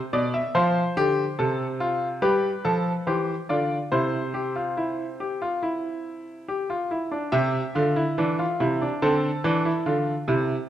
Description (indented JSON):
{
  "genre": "classical, baroque-style 3-part fugue for grand piano",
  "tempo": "71 BPM",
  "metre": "4/4",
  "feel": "straight",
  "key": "C major",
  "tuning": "A4 = 440 Hz",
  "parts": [
    { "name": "clear baby grand piano", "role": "solo", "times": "0.1-10.7 s", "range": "B2 to E5", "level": "-22 LUFS", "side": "equal", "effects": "none" }
  ],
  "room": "moderate recital hall reverb, RT60 1.3 s",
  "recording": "none",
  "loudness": "-22 LUFS",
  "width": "side -11 dB against mid",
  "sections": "0.0-7.3 A section; 7.3-10.7 B section",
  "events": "none",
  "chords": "0.0 N.C.; 0.6 F; 2.2 G7; 3.9 C; 9.0 Dm7"
}